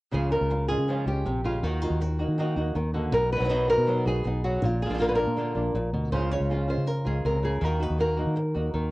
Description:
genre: flamenco.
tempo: 160 BPM.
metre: 4/4.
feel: straight.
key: unclear.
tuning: A4 = 440 Hz.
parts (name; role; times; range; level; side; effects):
flamenco guitar; melody; 0.1-8.9 s; Bb2 to Db5; -27 LUFS; equal; cassette tape, plate reverb.
flamenco guitar; stabs; 0.1-8.9 s; B2 to Gb4; -32 LUFS; right 1 dB; cassette tape, plate reverb.
fingered electric bass; bass; 0.1-8.9 s; Bb1 to Eb3; -28 LUFS; equal; none.
room: moderate booth ambience, RT60 0.2 s.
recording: home recording on cassette.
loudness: -24 LUFS.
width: side -20 dB against mid.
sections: 0.1-8.9 A section.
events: none.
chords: 0.1 Db; 1.6 Ebm; 3.1 B; 4.6 Bb; 6.1 Db; 7.6 Ebm.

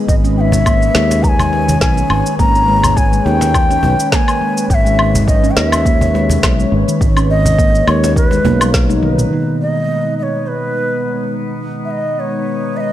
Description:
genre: organic downtempo.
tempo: 104 BPM.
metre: 4/4.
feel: swing 54% on 16ths.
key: unclear.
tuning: A4 = 440 Hz.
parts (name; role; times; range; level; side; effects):
airy breathy pad; sustained chords; 0.0-12.9 s; G#3 to A#5; -23 LUFS; left 1 dB; chorus, sidechain pumping.
handpan; arpeggios; 0.0-9.2 s; D#3 to D#4; -19 LUFS; right 1 dB; tape echo.
bright bansuri; melody; 0.1-12.9 s; B4 to A#5; -18 LUFS; left 1 dB; tape echo.
sustaining fretless electric bass; bass; 0.1-9.2 s; G#1 to D#2; -16 LUFS; equal; sidechain pumping.
afro-pop drum kit; drums; 0.1-9.3 s; cabasa, snare drum, toms, woodblock; -19 LUFS; left 1 dB; low-pass filter on perc, studio reverb, low-pass filter on snare, low-pass filter on toms.
electronic kick drum; drums; 0.1-8.9 s; none; -14 LUFS; equal; overdrive, studio reverb.
cajon; percussion; 0.5-8.6 s; none; -21 LUFS; right 1 dB; none.
tine electric piano; accompaniment; 9.3-12.9 s; B2 to D#4; -22 LUFS; right 2 dB; fast stereo tremolo, sidechain pumping, low-pass filter.
drifting glass-harmonics texture; texture; 10.0-12.9 s; B3 to B4; -27 LUFS; right 1 dB; chorus, built-in reverb.
room: light reverb.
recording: dark, warm production.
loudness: -11 LUFS.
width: side -12 dB against mid.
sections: 0.0-9.3 A section; 9.3-12.9 B section.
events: drum fill 8.9-9.3; filter sweep on tine electric piano 9.3-12.9.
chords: 0.1 C#m7/G#; 9.3 G#madd9.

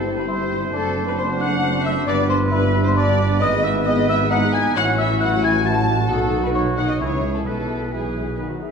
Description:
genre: cinematic, playful, whimsical film cue.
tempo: 134 BPM.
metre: 3/4.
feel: straight.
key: G major, E major from 3.4 s.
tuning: A4 = 435 Hz.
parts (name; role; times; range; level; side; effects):
celesta; melody; 0.0-8.7 s; G#4 to A6; -26 LUFS; left 2 dB; none.
muted chamber violin section; melody; 0.0-8.4 s; G#4 to A5; -30 LUFS; left 2 dB; none.
concert flute; second line; 0.0-8.7 s; G#4 to A5; -28 LUFS; left 2 dB; none.
mellow clarinet; second line; 0.0-8.6 s; B3 to E4; -28 LUFS; left 4 dB; none.
muted chamber violin section; second line; 0.0-8.4 s; G#4 to A5; -28 LUFS; left 2 dB; none.
warm oboe; second line; 0.0-8.5 s; F#4 to C5; -31 LUFS; right 2 dB; none.
mellow bassoon; accompaniment; 0.0-8.6 s; B3 to F#4; -27 LUFS; equal; none.
muted studio viola section; accompaniment; 0.0-8.7 s; D#3 to G#4; -28 LUFS; right 1 dB; none.
mellow French horn section; sustained chords; 0.0-8.5 s; D#3 to F#4; -31 LUFS; left 4 dB; none.
mellow tuba; bass; 0.0-8.6 s; F#1 to C#2; -28 LUFS; right 2 dB; none.
muted chamber cello section; bass; 0.0-8.6 s; F#2 to C#3; -28 LUFS; right 2 dB; none.
muted chamber double bass section; bass; 0.0-8.6 s; F#1 to C#2; -26 LUFS; right 3 dB; none.
room: wet recital hall reverb, RT60 1.6 s.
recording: heard from further back in the room.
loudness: -17 LUFS.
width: side -6 dB against mid.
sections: 0.0-8.7 A section.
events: none.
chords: 0.0 C/G; 0.7 D7/F#; 2.1 G; 3.4 E/G#; 4.8 F#m7/A; 6.1 B; 7.0 C#m; 7.5 E/B.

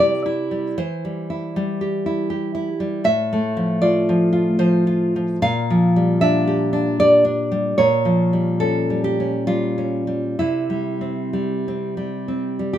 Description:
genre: romantic piece for solo classical guitar.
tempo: 62-81 BPM.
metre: 3/4.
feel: rubato.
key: unclear.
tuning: A4 = 440 Hz.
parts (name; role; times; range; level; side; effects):
nylon-string guitar; solo; 0.0-12.8 s; A2 to F5; -18 LUFS; equal; none.
room: light reverb.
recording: minimal, uncompressed stereo recording.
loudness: -18 LUFS.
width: side -11 dB against mid.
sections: 0.0-12.8 A section.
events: none.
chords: 0.0 C; 0.8 C/E; 3.1 F/A; 5.4 Gm7/Bb; 7.8 Gm7b5/Bb; 10.4 C.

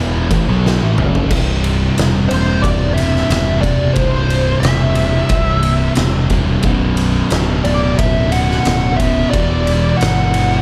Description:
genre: stoner and doom metal.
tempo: 90 BPM.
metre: 4/4.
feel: straight.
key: unclear.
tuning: A4 = 438 Hz.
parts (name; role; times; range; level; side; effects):
high-gain distorted guitar; riff; 0.0-10.6 s; B1 to B3; -26 LUFS; equal; distortion.
thick fuzz guitar; riff; 0.0-10.6 s; B1 to B3; -23 LUFS; equal; distortion.
thick fuzz guitar; riff; 0.0-10.6 s; B1 to B3; -22 LUFS; equal; distortion.
growling picked electric bass; bass; 0.0-10.6 s; B0 to B1; -21 LUFS; equal; overdrive.
oversized low-tuned drum kit; drums; 0.3-10.5 s; crash cymbal, kick drum, ride cymbal, snare drum, toms; -22 LUFS; equal; none.
fuzz lead guitar; melody; 2.3-10.6 s; C5 to F#5; -22 LUFS; equal; wah, distortion, analog delay.
room: light reverb, small room ambience.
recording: dark, warm production.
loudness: -15 LUFS.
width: mono.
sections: 0.0-1.3 A section; 1.3-10.6 B section.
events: drum fill 0.6-1.3.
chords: 0.0 B5; 1.3 C; 6.6 Bm; 9.3 Em.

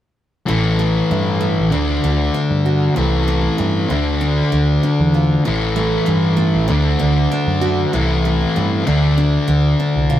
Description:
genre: rock.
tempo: 97 BPM.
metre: 4/4.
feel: straight.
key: A minor.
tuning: A4 = 439 Hz.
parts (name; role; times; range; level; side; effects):
picked steel-string acoustic guitar; arpeggios; 0.5-10.2 s; A2 to F#4; -23 LUFS; right 5 dB; none.
sludgy distorted guitar; riff; 0.5-10.2 s; A2 to D4; -17 LUFS; left 3 dB; overdrive.
hollow-body short-scale picked electric bass; bass; 0.5-10.2 s; A1 to G2; -19 LUFS; right 1 dB; none.
room: moderate studio reverb, RT60 0.6 s.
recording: rough rehearsal-room recording.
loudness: -14 LUFS.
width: side -12 dB against mid.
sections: 0.5-10.2 A section.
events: none.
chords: 0.5 A5; 1.7 D; 3.0 Am/C; 3.9 Dm; 5.4 A5; 6.7 D; 7.9 Am/C; 8.9 D5.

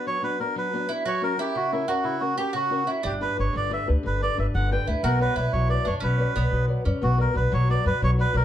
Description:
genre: italian folk, Italian serenade.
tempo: 121 BPM (dotted quarters).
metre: 6/8.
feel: straight.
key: B harmonic minor.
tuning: A4 = 440 Hz.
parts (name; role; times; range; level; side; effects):
melodica; melody; 0.0-8.4 s; E4 to G5; -27 LUFS; right 1 dB; plate reverb.
mandolin; second line; 0.0-7.0 s; B3 to G4; -30 LUFS; right 4 dB; none.
nylon-string guitar; accompaniment; 0.0-8.4 s; C#3 to D5; -30 LUFS; left 4 dB; none.
upright bass; bass; 3.0-8.4 s; G1 to F#2; -23 LUFS; equal; none.
room: light reverb.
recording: dark, warm production.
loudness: -22 LUFS.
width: side -11 dB against mid.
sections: 0.0-7.0 A section; 7.0-8.4 A section.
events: none.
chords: 0.0 Bm; 1.1 F#; 3.0 G; 5.0 Bmadd9; 7.0 Bm.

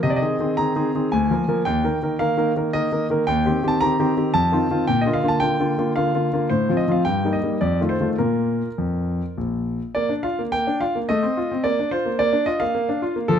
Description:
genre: classical-period piano sonatina.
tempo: 110 BPM.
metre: 3/4.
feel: rubato.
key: Eb major, Bb major from 3.3 s.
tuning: A4 = 439 Hz.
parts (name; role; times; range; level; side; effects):
clear grand piano; solo; 0.0-13.4 s; Bb1 to Bb5; -19 LUFS; equal; none.
room: moderate recital hall reverb, RT60 1.4 s.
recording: close, detailed microphones.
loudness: -19 LUFS.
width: side -8 dB against mid.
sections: 0.0-10.0 A section; 10.0-13.4 B section.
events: none.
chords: 0.0 Ab/C; 1.1 Bb7/D; 1.7 Eb; 3.3 Cm7/Eb; 4.3 F7; 4.9 Bb; 6.5 F/A; 7.1 Eb/G; 7.6 F7; 8.2 Bb5; 10.0 Bb; 11.1 F7/A; 11.6 Bb.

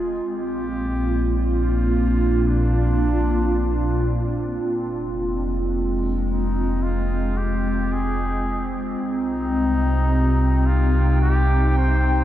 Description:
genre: ambient.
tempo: 55 BPM.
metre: 4/4.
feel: straight.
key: F dorian.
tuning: A4 = 440 Hz.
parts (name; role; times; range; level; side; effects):
warbly tape-like pad; sustained chords; 0.0-12.2 s; Bb2 to G5; -22 LUFS; equal; chorus, built-in reverb, phaser.
warm sub bass; bass; 0.0-12.2 s; F1 to C2; -22 LUFS; equal; tube saturation.
clear flugelhorn; melody; 0.3-12.2 s; D4 to C5; -31 LUFS; equal; diffuse ambient delay.
room: wet huge ambient reverb, RT60 7.9 s.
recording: dreamy mix soaked in reverb.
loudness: -19 LUFS.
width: side -12 dB against mid.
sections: 0.0-12.2 A section.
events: fade-in on flugelhorn 0.0-12.2.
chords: 0.3 Bbadd9; 4.6 Fm; 9.0 Cm.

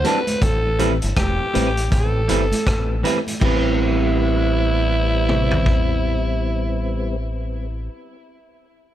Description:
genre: lovers rock reggae.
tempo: 80 BPM.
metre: 4/4.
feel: swing 61% on 16ths.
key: A minor.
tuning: A4 = 441 Hz.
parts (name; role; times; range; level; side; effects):
breathy alto saxophone; melody; 0.0-7.2 s; E4 to B4; -24 LUFS; right 1 dB; tape echo.
mellow tine electric piano; accompaniment; 0.0-7.9 s; C4 to B4; -28 LUFS; left 4 dB; tape echo.
electric guitar through a small old amp; stabs; 0.0-7.9 s; G3 to B4; -25 LUFS; right 7 dB; none.
deep dub fingered electric bass; bass; 0.0-7.9 s; E1 to A1; -22 LUFS; equal; none.
vintage drum kit; drums; 0.0-5.9 s; crash cymbal, hi-hat, kick drum, rim click, toms; -23 LUFS; equal; tape echo.
congas; percussion; 0.0-3.8 s; none; -30 LUFS; right 3 dB; tape echo.
mellow tonewheel organ; accompaniment; 0.1-7.2 s; D2 to D4; -30 LUFS; left 2 dB; chorus vibrato, slow rotary speaker, tape echo.
room: light reverb, small room ambience.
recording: none.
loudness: -17 LUFS.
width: side -12 dB against mid.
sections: 0.0-3.4 A section; 3.4-6.4 B section.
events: none.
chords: 0.4 Am9.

